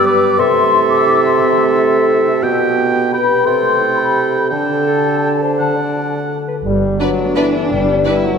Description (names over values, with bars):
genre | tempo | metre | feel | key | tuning
classical | 157-188 BPM | 3/4 | rubato | G major | A4 = 437 Hz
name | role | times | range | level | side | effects
clear oboe | second line | 0.0-6.5 s | D5 to G5 | -20 LUFS | right 1 dB | none
mellow hollow large flute ensemble | second line | 0.0-6.5 s | G5 to D6 | -18 LUFS | left 3 dB | none
warm clarinet | second line | 0.0-6.6 s | G4 to D5 | -20 LUFS | right 2 dB | none
mellow bassoon | accompaniment | 0.0-6.5 s | B2 to G3 | -17 LUFS | right 4 dB | none
concert harp | arpeggios | 0.0-8.4 s | G2 to D5 | -20 LUFS | left 5 dB | none
warm French horn section | sustained chords | 6.7-8.4 s | E3 to G3 | -16 LUFS | left 4 dB | none
warm chamber double bass section | bass | 6.7-8.0 s | G1 | -21 LUFS | right 5 dB | none
rich chamber violin section | melody | 7.0-8.1 s | D5 | -29 LUFS | left 4 dB | none
rich studio violin section | second line | 7.0-8.1 s | B4 | -25 LUFS | equal | none
warm chamber viola section | accompaniment | 7.0-8.1 s | D4 | -23 LUFS | right 3 dB | none
warm studio cello section | bass | 7.0-8.4 s | D4 to E4 | -20 LUFS | right 3 dB | none
room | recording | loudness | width
wet scoring stage reverb, RT60 1.7 s | none | -12 LUFS | side -6 dB against mid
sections
0.0-6.7 A section; 6.7-8.4 B section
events
none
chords
0.4 Am/C; 2.4 G/B; 3.5 Am7/C; 4.5 Dsus4; 5.6 D; 6.7 G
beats
0.06 | 0.39 0.72 1.07 | 1.41 1.74 2.10 | 2.43 2.77 3.13 | 3.46 3.80 4.16 | 4.51 4.87 5.24 | 5.59 5.94 6.31 | 6.66 7.01 7.37 | 7.71 8.06